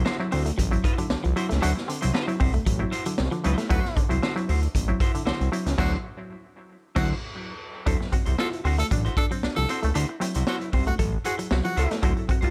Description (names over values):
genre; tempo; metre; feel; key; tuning
funk; 115 BPM; 4/4; straight; D mixolydian; A4 = 440 Hz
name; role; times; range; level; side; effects
semi-hollow electric guitar; accompaniment; 0.0-12.5 s; E4 to C5; -36 LUFS; equal; none
muted clav; stabs; 0.0-12.5 s; D3 to A4; -33 LUFS; equal; overdrive, tape echo
fat analog bass; bass; 0.0-12.5 s; A1 to D2; -27 LUFS; equal; none
clean electric guitar; riff; 0.1-3.7, 7.9-12.4 s; F3 to D4; -35 LUFS; equal; none
raw garage drum kit; drums; 0.1-12.5 s; crash cymbal, hi-hat, kick drum, snare drum; -30 LUFS; equal; none
breathy tenor saxophone; second line; 1.6-12.0 s; F#4 to A4; -34 LUFS; equal; none
room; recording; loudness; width
studio ambience; none; -25 LUFS; mono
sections
0.0-7.9 A section; 7.9-12.5 B section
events
band accent 5.8-7.9; clav solo 7.9-12.5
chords
0.0 D9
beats
0.06 0.58 1.10 | 1.62 2.14 2.66 3.18 | 3.70 4.22 4.75 5.26 | 5.79 6.31 6.83 7.35 | 7.87 8.39 8.91 9.43 | 9.95 10.47 10.99 11.51 | 12.03